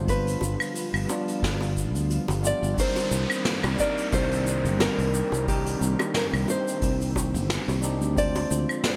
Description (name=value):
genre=sunset chillout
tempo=89 BPM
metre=4/4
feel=swing 55% on 16ths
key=C minor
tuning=A4 = 440 Hz
part: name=nylon-string guitar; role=melody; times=0.0-8.8 s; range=G4 to D5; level=-32 LUFS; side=equal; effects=subtle chorus, delay
part: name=bell-like tine electric piano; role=accompaniment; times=0.0-9.0 s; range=G3 to D5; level=-33 LUFS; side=equal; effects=digital delay
part: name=soft string machine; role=sustained chords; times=0.0-9.0 s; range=D3 to G4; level=-37 LUFS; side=equal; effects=none
part: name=sustaining fretless electric bass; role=bass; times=0.0-8.6 s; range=G1 to D2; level=-30 LUFS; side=equal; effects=none
part: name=electronic kick drum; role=drums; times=0.1-8.3 s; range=none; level=-33 LUFS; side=equal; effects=none
part: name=vintage brush drum kit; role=drums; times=0.1-9.0 s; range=claves, hi-hat, shaker, snare drum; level=-33 LUFS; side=equal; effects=gated reverb
part: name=bongos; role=percussion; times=0.4-9.0 s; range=none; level=-38 LUFS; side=equal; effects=none
part: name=downlifter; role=sound effects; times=2.8-8.2 s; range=none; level=-38 LUFS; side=equal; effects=none
room=moderate lush hall reverb, RT60 2.7 s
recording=bright 1980s-style digital production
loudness=-26 LUFS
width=mono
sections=0.0-2.8 A section; 2.8-9.0 B section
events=kick drops out 2.1-2.8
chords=0.1 G7; 2.8 Cm7; 8.2 Dm7b5